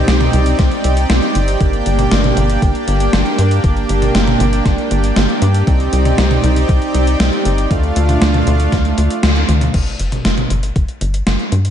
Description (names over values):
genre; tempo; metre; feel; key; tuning
synthwave; 118 BPM; 4/4; straight; G minor; A4 = 440 Hz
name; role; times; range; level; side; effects
soft supersaw; sustained chords; 0.0-9.7 s; A3 to G5; -17 LUFS; right 1 dB; sidechain pumping
tight sequencer bass; bass; 0.0-11.7 s; G1 to G2; -15 LUFS; equal; sidechain pumping
gated 80s digital drum machine; drums; 0.1-11.7 s; crash cymbal, hi-hat, snare drum, toms; -18 LUFS; right 1 dB; gated reverb, gated reverb snare, overdrive
electronic kick drum; drums; 0.6-10.9 s; none; -16 LUFS; equal; overdrive
room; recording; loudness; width
light reverb, digital ambience; nothing above 10.5 kHz; -12 LUFS; side -9 dB against mid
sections
0.0-9.7 A section; 9.7-11.7 B section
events
band accent 9.2; drum fill 9.4-9.7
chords
0.0 Cmadd9; 1.6 Gm; 5.7 Cmadd9; 7.7 Dm; 9.7 N.C.